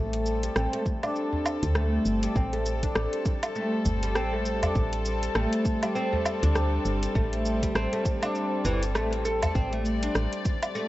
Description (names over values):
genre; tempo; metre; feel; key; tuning
organic downtempo; 100 BPM; 4/4; swing 58% on 16ths; A minor; A4 = 441 Hz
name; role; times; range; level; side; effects
warm chamber string section; sustained chords; 0.0-10.9 s; G3 to D5; -32 LUFS; left 1 dB; vintage 12-bit sampler grit, sidechain pumping
oud; arpeggios; 0.0-10.9 s; E3 to A4; -30 LUFS; equal; low-pass filter, ping-pong delay
woody FM bass; bass; 0.0-10.3 s; G1 to D2; -28 LUFS; equal; tube saturation, sidechain pumping
deep house drum kit; drums; 0.1-10.9 s; cabasa, hi-hat, rim click, woodblock; -32 LUFS; equal; overdrive
electronic kick drum; drums; 0.9-10.6 s; none; -28 LUFS; equal; overdrive
udu; percussion; 1.3-9.5 s; none; -31 LUFS; equal; none
room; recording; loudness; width
light reverb, small room ambience; worn, warbling old tape, cassette tape, warbly pitch drift, nothing above 7.9 kHz; -24 LUFS; side -16 dB against mid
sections
0.0-10.9 A section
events
filter sweep on oud 0.0-10.9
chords
0.0 Am7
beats
0.55 1.15 1.75 | 2.35 2.95 3.55 4.15 | 4.75 5.35 5.95 6.55 | 7.15 7.75 8.35 8.95 | 9.55 10.15 10.75